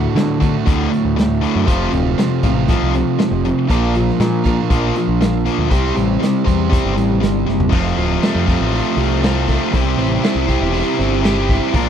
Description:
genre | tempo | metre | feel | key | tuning
classic rock | 119 BPM | 4/4 | straight | unclear | A4 = 441 Hz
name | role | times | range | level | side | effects
overdriven electric guitar | riff | 0.0-11.9 s | D2 to C5 | -19 LUFS | right 13 dB | none
tight distorted guitar | riff | 0.0-11.9 s | D2 to C5 | -20 LUFS | left 11 dB | distortion
growling picked electric bass | bass | 0.0-11.9 s | D1 to D3 | -19 LUFS | equal | overdrive
raw garage drum kit | drums | 0.2-11.9 s | crash cymbal, hi-hat, kick drum, snare drum, toms | -19 LUFS | equal | none
room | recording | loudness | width
little or no reverb | dry, close 1970s-style studio recording | -14 LUFS | side -8 dB against mid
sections
0.0-7.7 A section; 7.7-11.9 B section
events
drum fill 7.5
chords
0.0 D; 1.7 F; 3.7 Bb; 5.7 C; 7.7 F; 9.7 C

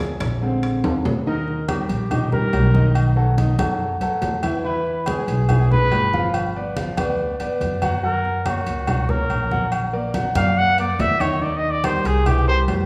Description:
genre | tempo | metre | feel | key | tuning
Afro-Cuban jazz | 142 BPM | 4/4 | straight | unclear | A4 = 440 Hz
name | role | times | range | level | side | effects
upright bass | bass | 0.0-12.9 s | G1 to F#2 | -25 LUFS | equal | none
timbales and agogo bells | percussion | 0.0-12.9 s | none | -31 LUFS | equal | none
congas | percussion | 0.2-12.9 s | none | -29 LUFS | equal | none
clear concert grand piano | accompaniment | 0.4-12.8 s | D3 to Gb5 | -27 LUFS | equal | none
warm trumpet | melody | 1.3-12.6 s | Gb4 to F#5 | -25 LUFS | equal | none
room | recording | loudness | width
wet recital hall reverb, RT60 1.6 s | recorded in a church or concert hall, small room ambience | -20 LUFS | mono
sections
0.0-1.3 A section; 1.3-12.9 A section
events
grand piano solo 0.0-1.3; drum fill 0.8-1.3; trumpet solo 1.3-12.9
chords
0.4 Bb7; 1.3 Eb; 3.0 B7; 4.6 E; 6.3 G; 8.0 Gb; 9.7 Bbaug; 11.4 Eb; 12.3 C7

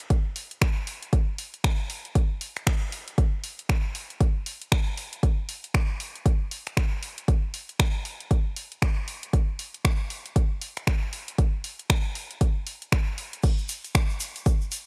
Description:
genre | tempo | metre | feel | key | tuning
house | 117 BPM | 4/4 | swing 60% on 16ths | none | none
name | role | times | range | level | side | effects
punchy analog drum machine | drums | 0.0-14.8 s | crash cymbal, finger snaps, hi-hat | -34 LUFS | equal | none
electronic kick drum | drums | 0.1-14.6 s | none | -25 LUFS | equal | overdrive
egg shaker | percussion | 13.4-14.8 s | none | -39 LUFS | equal | none
room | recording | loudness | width
little or no reverb | none | -27 LUFS | mono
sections
0.0-14.9 A section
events
none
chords
none

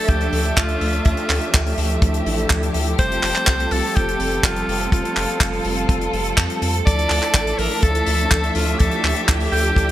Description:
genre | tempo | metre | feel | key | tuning
italo disco | 124 BPM | 4/4 | straight | unclear | A4 = 440 Hz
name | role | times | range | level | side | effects
edgy alto saxophone | melody | 0.0-9.9 s | F4 to D5 | -24 LUFS | equal | digital delay
dark chamber string section | sustained chords | 0.0-9.9 s | F3 to E5 | -24 LUFS | equal | none
mellow synth brass | stabs | 0.0-9.9 s | F3 to E5 | -27 LUFS | right 1 dB | chorus, vintage 12-bit sampler grit
round analog bass | bass | 0.1-9.9 s | F1 to F2 | -23 LUFS | equal | none
damped 70s drum kit | drums | 0.1-9.9 s | handclaps, hi-hat | -23 LUFS | left 1 dB | none
kick drum | drums | 0.1-9.9 s | none | -17 LUFS | equal | none
room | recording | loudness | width
light reverb, small room ambience | bright 1980s-style digital production | -16 LUFS | side -13 dB against mid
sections
0.0-9.9 A section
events
none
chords
0.0 Dmadd9; 3.0 Fadd9; 6.9 Dmadd9

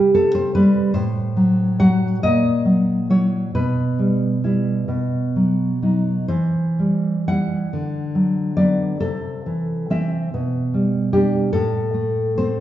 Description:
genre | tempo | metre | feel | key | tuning
romantic piece for solo classical guitar | 40-51 BPM (dotted quarters) | 6/8 | rubato | unclear | A4 = 444 Hz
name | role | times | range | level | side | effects
nylon-string guitar | solo | 0.0-12.6 s | A2 to F#5 | -17 LUFS | equal | none
room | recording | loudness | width
wet recital hall reverb, RT60 1.5 s | recorded in a church or concert hall, nothing above 7.8 kHz | -17 LUFS | side -12 dB against mid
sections
0.0-12.6 A section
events
none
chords
0.0 C; 0.9 F#dim/A; 2.2 F#7/A#; 3.5 Em/B; 4.9 B; 6.3 C/E; 7.7 Bm/D; 9.0 Am/C; 10.3 G/B; 11.5 Am

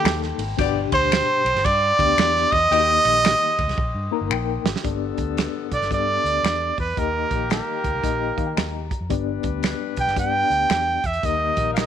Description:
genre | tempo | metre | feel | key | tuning
uptempo 1960s-style soul | 113 BPM | 4/4 | swing 64% on 8ths | unclear | A4 = 441 Hz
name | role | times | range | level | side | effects
clear trumpet | melody | 0.0-11.9 s | G4 to G5 | -20 LUFS | right 2 dB | none
glockenspiel with hard plastic mallets | second line | 0.0-4.3 s | G5 to Eb6 | -31 LUFS | left 14 dB | none
mellow reed electric piano | accompaniment | 0.0-11.9 s | G2 to Bb5 | -28 LUFS | left 14 dB | fast tremolo
vintage muted fingered electric bass | bass | 0.0-11.8 s | G1 to Eb3 | -29 LUFS | equal | none
warm soul drum kit | drums | 0.1-11.9 s | hi-hat, kick drum, ride cymbal, snare drum | -26 LUFS | right 3 dB | none
finger snap | percussion | 0.1-11.9 s | none | -29 LUFS | left 12 dB | none
warm horn section | second line | 0.6-11.9 s | D3 to Eb5 | -31 LUFS | left 14 dB | none
room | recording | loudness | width
light reverb, small room ambience | 1960s-style stereo | -19 LUFS | side -9 dB against mid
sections
0.0-4.8 A section; 4.8-11.9 B section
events
reed electric piano fill 0.0-0.6, 3.8-4.8, 8.0-9.1; drum fill 3.8-4.8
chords
0.0 Eb; 0.6 G; 2.7 Eb; 4.8 G; 7.0 Eb; 9.1 G; 11.2 Eb

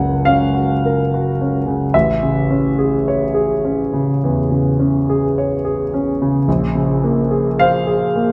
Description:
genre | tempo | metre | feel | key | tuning
classical, impressionist solo piano | 53 BPM | 4/4 | rubato | unclear | A4 = 440 Hz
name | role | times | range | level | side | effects
clear concert grand piano | solo | 0.0-8.3 s | A1 to Ab5 | -17 LUFS | equal | none
room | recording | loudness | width
wet recital hall reverb, RT60 1.7 s | dark, warm production, nothing above 10.4 kHz | -17 LUFS | mono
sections
0.0-8.3 A section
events
none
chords
0.0 Gbmaj7; 1.9 Amaj7; 6.5 Bbm9

